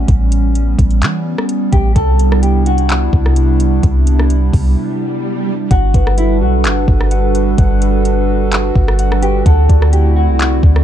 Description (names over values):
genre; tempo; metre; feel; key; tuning
hip hop, atmospheric cloud-rap; 128 BPM; 4/4; half-time; G major; A4 = 441 Hz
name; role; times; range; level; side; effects
mellow electric guitar; melody; 0.0-10.8 s; E4 to A4; -20 LUFS; left 2 dB; spring reverb, ping-pong delay
hollow soft pad; sustained chords; 0.0-10.8 s; C3 to B4; -18 LUFS; right 3 dB; chorus, sidechain pumping
soft 808-style bass; bass; 0.0-10.8 s; G1 to E3; -12 LUFS; equal; none
smooth R&B drum kit; drums; 0.1-10.8 s; handclaps, hi-hat, kick drum, rim click; -15 LUFS; equal; none
swell; sound effects; 4.3-5.7 s; none; -25 LUFS; right 5 dB; none
muted felt-like synth keys; arpeggios; 5.7-10.8 s; F#4 to F#5; -23 LUFS; left 6 dB; chorus, ping-pong delay
room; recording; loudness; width
little or no reverb; dark, warm production; -11 LUFS; side -10 dB against mid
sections
0.0-5.7 A section; 5.7-10.8 B section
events
swell 4.3-5.7; break 4.8-5.7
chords
0.0 A9; 2.0 Cmaj9; 5.7 Gmaj9; 9.5 D7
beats
| 0.08 0.55 1.02 1.49 | 1.96 2.43 2.90 3.36 | 3.83 4.30 4.77 5.24 | 5.71 6.18 6.65 7.11 | 7.58 8.05 8.52 8.99 | 9.46 9.93 10.40